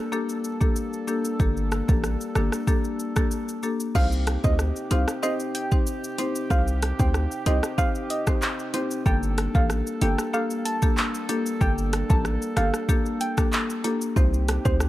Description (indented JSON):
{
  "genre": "dancehall",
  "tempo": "94 BPM",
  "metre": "4/4",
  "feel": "straight",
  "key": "unclear",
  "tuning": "A4 = 440 Hz",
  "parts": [
    { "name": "warm brass ensemble", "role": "sustained chords", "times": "0.0-14.9 s", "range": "C3 to A4", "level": "-36 LUFS", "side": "right 4 dB", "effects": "sidechain pumping" },
    { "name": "marimba with medium mallets", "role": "accompaniment", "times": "0.1-14.8 s", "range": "Bb3 to C5", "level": "-28 LUFS", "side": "left 3 dB", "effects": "none" },
    { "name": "afro-pop drum kit", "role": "drums", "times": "0.1-14.9 s", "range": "crash cymbal, handclaps, hi-hat, kick drum, rim click, shaker", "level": "-24 LUFS", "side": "equal", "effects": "none" },
    { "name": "hard-hitting 808-style bass", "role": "bass", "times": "1.4-14.9 s", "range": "G1 to D2", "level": "-24 LUFS", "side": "equal", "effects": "none" },
    { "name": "soft struck synth lead", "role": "melody", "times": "4.0-14.8 s", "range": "C5 to A5", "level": "-31 LUFS", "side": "right 2 dB", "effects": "chorus, tape echo" },
    { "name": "bongos", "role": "percussion", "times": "4.0-14.3 s", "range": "none", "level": "-37 LUFS", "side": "right 6 dB", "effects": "none" }
  ],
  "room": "little or no reverb",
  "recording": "none",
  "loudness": "-22 LUFS",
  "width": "side -15 dB against mid",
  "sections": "0.0-4.0 A section; 4.0-14.2 B section",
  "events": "none",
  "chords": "0.0 Gmadd9; 4.0 Cm; 9.1 Gmadd9; 14.2 Cm"
}